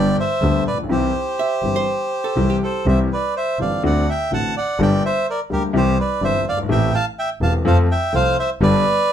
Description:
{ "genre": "tango", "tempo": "125 BPM", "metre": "4/4", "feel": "rubato", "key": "C major", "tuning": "A4 = 440 Hz", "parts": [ { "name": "bandoneon", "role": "melody", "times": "0.0-9.1 s", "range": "G4 to A5", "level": "-20 LUFS", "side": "right 1 dB", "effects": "none" }, { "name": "warm concert grand piano", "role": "accompaniment", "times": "0.0-8.8 s", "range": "E1 to A4", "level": "-20 LUFS", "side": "left 3 dB", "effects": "none" }, { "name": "clear double bass", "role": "bass", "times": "0.0-8.8 s", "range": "E1 to F2", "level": "-21 LUFS", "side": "right 2 dB", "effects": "none" }, { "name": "archtop guitar, miked and amplified", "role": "second line", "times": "1.4-2.8 s", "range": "G4 to E5", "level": "-25 LUFS", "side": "right 6 dB", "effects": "none" } ], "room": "moderate studio reverb, RT60 0.5 s", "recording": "none", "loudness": "-16 LUFS", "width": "side -9 dB against mid", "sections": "0.0-2.9 A section; 2.9-9.1 B section", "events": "none", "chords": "0.0 G; 0.9 C; 3.8 D7; 4.8 Gm; 5.7 C; 6.7 Am7; 7.7 F; 8.6 G" }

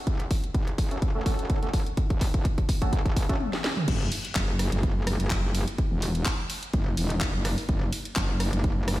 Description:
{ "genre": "bass house", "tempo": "126 BPM", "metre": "4/4", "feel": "swing 54% on 16ths", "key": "unclear", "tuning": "A4 = 440 Hz", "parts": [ { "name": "metallic wobble bass", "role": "bass", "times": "0.1-9.0 s", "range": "E1 to F#1", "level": "-28 LUFS", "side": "equal", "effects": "distortion, chorus, tube saturation, sidechain pumping, high-pass filter" }, { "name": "electronic kick drum", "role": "drums", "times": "0.1-8.7 s", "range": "none", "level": "-26 LUFS", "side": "equal", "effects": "none" }, { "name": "house drum kit", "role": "drums", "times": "0.1-9.0 s", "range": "crash cymbal, handclaps, hi-hat, ride cymbal, rim click, snare drum, toms", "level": "-32 LUFS", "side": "equal", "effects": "none" }, { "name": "percussive organ stab", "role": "stabs", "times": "0.9-3.4 s", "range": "A3 to A4", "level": "-36 LUFS", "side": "right 2 dB", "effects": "ensemble chorus, sidechain pumping, dub echo" } ], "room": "little or no reverb", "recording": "played on a big sound system in a bare room, stone room reverb", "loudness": "-24 LUFS", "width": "side -16 dB against mid", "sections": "0.0-3.9 A section; 3.9-9.0 B section", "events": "build-up 0.0-3.9; drum fill 0.0-3.4, 3.4-3.9; stop 3.4-3.9; drop 3.9-9.0", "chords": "0.0 F#m; 3.9 Esus2" }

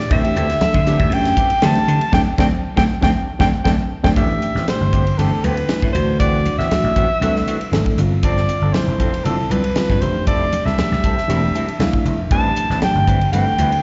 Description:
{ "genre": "electric jazz fusion", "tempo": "118 BPM", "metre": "4/4", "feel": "straight", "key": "unclear", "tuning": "A4 = 441 Hz", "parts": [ { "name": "breathy soprano saxophone", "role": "melody", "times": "0.0-13.8 s", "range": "A4 to A5", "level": "-23 LUFS", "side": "equal", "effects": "slapback echo, tape echo" }, { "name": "bright reed electric piano", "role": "accompaniment", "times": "0.0-13.7 s", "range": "D3 to A5", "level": "-26 LUFS", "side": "equal", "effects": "fast tremolo, slapback echo" }, { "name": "electric guitar at the edge of break-up", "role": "stabs", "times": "0.0-13.8 s", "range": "E3 to B4", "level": "-30 LUFS", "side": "equal", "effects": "lush chorus, slapback echo" }, { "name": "crisp fusion drum kit", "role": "drums", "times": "0.0-13.8 s", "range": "hi-hat, kick drum, ride cymbal, snare drum", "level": "-24 LUFS", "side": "equal", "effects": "none" }, { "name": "vintage slap bass", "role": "bass", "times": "0.1-13.8 s", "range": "E1 to D3", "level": "-22 LUFS", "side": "equal", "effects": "none" }, { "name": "congas", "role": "percussion", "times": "0.1-13.7 s", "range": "none", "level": "-28 LUFS", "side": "equal", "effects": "none" } ], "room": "light reverb", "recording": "live gig heard through the venue's PA, recital hall reverb, nothing above 7.7 kHz", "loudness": "-17 LUFS", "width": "mono", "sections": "0.0-4.2 A section; 4.2-13.8 B section", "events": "band accent 2.1-4.2; drum fill 3.1-4.2; reed electric piano fill 11.3-12.3", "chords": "0.1 D9sus4; 4.2 Am9; 5.9 D13; 8.0 G9sus4; 10.0 Fmaj9; 12.3 Am9" }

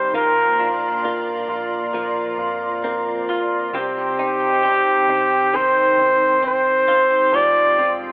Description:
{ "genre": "pop", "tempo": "67 BPM", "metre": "4/4", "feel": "straight", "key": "C minor", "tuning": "A4 = 440 Hz", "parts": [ { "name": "warm flugelhorn", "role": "melody", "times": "0.0-8.0 s", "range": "G4 to D5", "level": "-16 LUFS", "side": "equal", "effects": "none" }, { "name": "clear concert grand piano", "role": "accompaniment", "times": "0.0-8.1 s", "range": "F3 to F4", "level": "-25 LUFS", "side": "equal", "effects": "none" }, { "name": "glassy FM pad", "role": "sustained chords", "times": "0.0-8.1 s", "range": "Ab3 to C6", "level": "-26 LUFS", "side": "equal", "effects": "ensemble chorus, built-in reverb" }, { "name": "twelve-string electric guitar", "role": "arpeggios", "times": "0.0-8.1 s", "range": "F2 to G4", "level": "-31 LUFS", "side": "left 1 dB", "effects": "tremolo" }, { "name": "vintage muted fingered electric bass", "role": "bass", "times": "0.1-8.1 s", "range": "F1 to F2", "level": "-45 LUFS", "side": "equal", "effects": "none" } ], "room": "moderate plate reverb, RT60 2.8 s", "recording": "telephone sound", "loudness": "-16 LUFS", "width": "side -27 dB against mid", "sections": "0.0-8.1 A section", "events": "none", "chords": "0.1 Bbadd9; 3.7 Cm; 7.3 Fmadd9" }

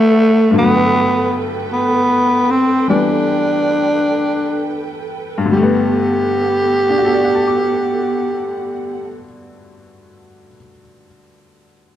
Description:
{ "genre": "jazz ballad", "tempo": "43-56 BPM", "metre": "4/4", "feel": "swing 67% on 8ths", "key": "G major", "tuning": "A4 = 440 Hz", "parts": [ { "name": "growling tenor saxophone", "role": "melody", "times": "0.0-9.1 s", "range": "A3 to G4", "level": "-14 LUFS", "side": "equal", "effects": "none" }, { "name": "bright upright piano", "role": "accompaniment", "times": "0.0-12.0 s", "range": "G2 to D6", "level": "-19 LUFS", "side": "left 3 dB", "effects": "none" }, { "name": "warm studio string section", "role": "sustained chords", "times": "0.0-9.1 s", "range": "B3 to G5", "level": "-23 LUFS", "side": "right 3 dB", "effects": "none" } ], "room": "moderate large studio reverb, RT60 1.2 s", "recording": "dark, warm production", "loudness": "-13 LUFS", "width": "side -11 dB against mid", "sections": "0.0-5.5 A section; 5.5-11.1 B section", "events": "slowing down 0.0-5.5", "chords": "0.0 Gmaj9" }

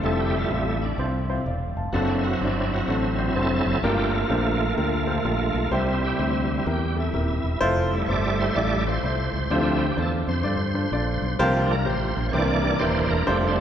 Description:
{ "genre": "gospel", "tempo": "127 BPM", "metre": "4/4", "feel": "swing 64% on 8ths", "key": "F major", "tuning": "A4 = 439 Hz", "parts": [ { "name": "warm baby grand piano", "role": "accompaniment", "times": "0.0-13.6 s", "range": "G2 to A5", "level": "-27 LUFS", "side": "left 1 dB", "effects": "none" }, { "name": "bright tonewheel organ", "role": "sustained chords", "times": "0.0-13.6 s", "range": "E3 to D5", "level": "-25 LUFS", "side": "right 2 dB", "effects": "fast rotary speaker, overdrive, chorus vibrato" }, { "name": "fingered electric bass", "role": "bass", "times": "0.0-13.6 s", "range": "Eb1 to G2", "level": "-26 LUFS", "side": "equal", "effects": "none" } ], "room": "wet church reverb, RT60 3.4 s", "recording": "recorded in a church or concert hall", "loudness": "-21 LUFS", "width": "side -9 dB against mid", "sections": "0.0-13.6 A section", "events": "tonewheel organ solo 0.0-13.6", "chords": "0.0 Fmaj7; 1.9 D7/F#; 3.8 Gm7; 5.7 C; 7.6 Fmaj7; 9.5 Dm7; 11.4 C7sus4; 12.3 C7" }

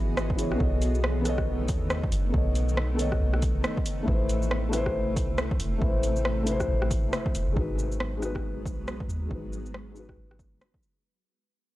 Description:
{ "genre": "future garage", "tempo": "138 BPM", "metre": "4/4", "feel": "swing 60% on 16ths", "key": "G# phrygian", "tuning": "A4 = 440 Hz", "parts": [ { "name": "felt-muted upright piano", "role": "accompaniment", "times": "0.0-11.1 s", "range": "E3 to D#5", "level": "-31 LUFS", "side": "left 2 dB", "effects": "sidechain pumping, low-pass filter, tape echo" }, { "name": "granular cloud pad", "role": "sustained chords", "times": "0.0-11.0 s", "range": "C3 to D#5", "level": "-36 LUFS", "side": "equal", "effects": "built-in reverb, sidechain pumping" }, { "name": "soft 808-style bass", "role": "bass", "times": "0.0-10.6 s", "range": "E1 to D#2", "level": "-28 LUFS", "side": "equal", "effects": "transformer saturation" }, { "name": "deep house drum kit", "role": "drums", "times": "0.2-10.9 s", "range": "hi-hat, rim click, shaker", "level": "-32 LUFS", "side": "equal", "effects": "overdrive" }, { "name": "electronic kick drum", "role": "drums", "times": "0.3-10.8 s", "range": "none", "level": "-30 LUFS", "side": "equal", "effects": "overdrive" } ], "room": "digital ambience", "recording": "dry, gritty hardware recording, cassette tape", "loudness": "-25 LUFS", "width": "side -16 dB against mid", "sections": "0.0-7.6 A section; 7.6-11.0 B section", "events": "fade-out 7.6-11.0; filter sweep on felt piano 7.6-11.0", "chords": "0.0 Emaj7; 0.6 B9; 4.1 Amadd9; 7.6 G#m7" }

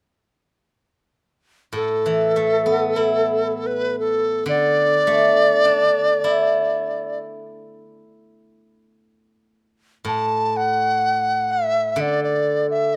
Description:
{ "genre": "chinese traditional, Chinese chamber ensemble", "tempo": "free time", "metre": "none", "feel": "none", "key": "D gong mode", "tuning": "A4 = 440 Hz", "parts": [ { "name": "steel-string zither", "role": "accompaniment", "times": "1.7-13.0 s", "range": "A2 to E4", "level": "-25 LUFS", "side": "equal", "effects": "none" }, { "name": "bright reedy large dizi", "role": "melody", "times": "1.8-13.0 s", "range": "A4 to A5", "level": "-21 LUFS", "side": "equal", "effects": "none" } ], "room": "light reverb", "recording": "close, detailed microphones", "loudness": "-20 LUFS", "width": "mono", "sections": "0.6-10.1 A section; 10.1-13.0 B section", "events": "none", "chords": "none" }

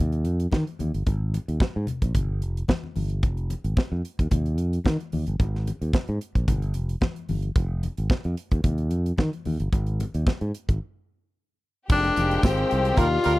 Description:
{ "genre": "disco", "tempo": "111 BPM", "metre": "4/4", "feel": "straight", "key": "F dorian", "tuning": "A4 = 440 Hz", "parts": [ { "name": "fingered electric bass", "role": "bass", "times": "0.0-13.4 s", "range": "F1 to Eb3", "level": "-25 LUFS", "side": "equal", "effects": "none" }, { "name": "modern studio drum kit", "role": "drums", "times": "0.1-13.4 s", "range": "crash cymbal, hi-hat, kick drum, snare drum", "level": "-22 LUFS", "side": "equal", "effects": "none" }, { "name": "congas", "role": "percussion", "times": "0.2-13.1 s", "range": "none", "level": "-34 LUFS", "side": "left 4 dB", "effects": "none" }, { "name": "breathy tenor saxophone", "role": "melody", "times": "11.9-13.4 s", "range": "C4 to F4", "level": "-23 LUFS", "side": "left 3 dB", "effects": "none" }, { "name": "clear studio string section", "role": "second line", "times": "11.9-13.4 s", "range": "F4 to G5", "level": "-30 LUFS", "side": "left 2 dB", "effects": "none" }, { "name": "warm French horn section", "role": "sustained chords", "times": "11.9-13.4 s", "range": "Eb3 to G4", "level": "-30 LUFS", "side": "equal", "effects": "none" }, { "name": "tambourine", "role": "percussion", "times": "11.9-13.4 s", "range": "none", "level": "-45 LUFS", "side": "right 12 dB", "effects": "none" }, { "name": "warm horn section", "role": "stabs", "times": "13.0-13.3 s", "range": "G3 to Bb4", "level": "-26 LUFS", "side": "right 4 dB", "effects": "none" } ], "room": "little or no reverb", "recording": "dry, close 1970s-style studio recording", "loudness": "-23 LUFS", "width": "side -19 dB against mid", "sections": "0.0-11.9 A section; 11.9-13.4 B section", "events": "break 10.8-11.9", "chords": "0.0 Ebsus2; 1.1 N.C.; 2.1 Fsus2; 3.2 N.C.; 4.3 Ebsus2; 5.4 N.C.; 6.5 Fsus2; 7.6 N.C.; 8.6 Ebsus2; 9.7 Ab5; 10.8 N.C.; 11.9 Fm9" }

